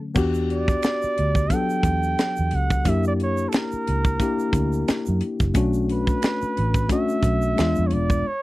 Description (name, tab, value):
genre	R&B, neo-soul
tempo	89 BPM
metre	4/4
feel	swing 56% on 16ths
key	unclear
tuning	A4 = 435 Hz
part	tine electric piano	accompaniment	0.0-8.3 s	F#3 to A4	-25 LUFS	left 3 dB	none
part	vintage muted fingered electric bass	bass	0.2-8.2 s	E1 to F#2	-24 LUFS	right 1 dB	none
part	tight funk drum kit	drums	0.2-8.2 s	crash cymbal, hi-hat, kick drum, snare drum	-23 LUFS	equal	none
part	egg shaker and finger snaps	percussion	0.2-8.2 s	none	-39 LUFS	right 11 dB	none
part	warm flugelhorn	melody	0.5-8.4 s	A4 to G5	-26 LUFS	right 3 dB	none
room	little or no reverb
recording	dry, close 1970s-style studio recording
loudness	-20 LUFS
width	side -18 dB against mid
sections	0.2-8.4 A section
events	break 0.0; band accent 8.2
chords	0.2 Em9; 2.9 F#7b9b13; 5.6 Bm7; 7.6 E7b9